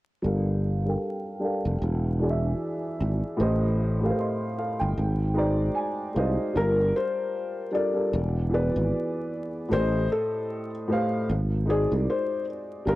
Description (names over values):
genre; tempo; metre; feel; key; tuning
hip hop; 76 BPM; 4/4; swing 58% on 16ths; unclear; A4 = 440 Hz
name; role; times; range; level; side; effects
dark upright piano; accompaniment; 0.2-13.0 s; A2 to C6; -28 LUFS; equal; cassette tape, low-pass filter
sustaining fretless electric bass; bass; 0.2-13.0 s; E1 to C2; -25 LUFS; equal; tube saturation, lush chorus
felt-muted upright piano; melody; 6.6-13.0 s; Ab4 to D5; -28 LUFS; left 2 dB; analog delay
room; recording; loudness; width
light reverb; dry, gritty hardware recording, vinyl crackle; -24 LUFS; side -17 dB against mid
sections
0.2-6.5 A section; 6.5-13.0 B section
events
filter sweep on upright piano 0.2-6.5; upright piano fill 5.0-6.5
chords
0.2 Gm7; 1.8 E7; 3.4 Am7b5; 5.0 Ab7#11; 6.5 Gm7; 8.1 E7; 9.7 Am7b5; 11.3 Ab7#11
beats
| 0.23 1.02 1.81 2.60 | 3.39 4.18 4.97 5.76 | 6.55 7.34 8.13 8.92 | 9.71 10.50 11.29 12.08 | 12.87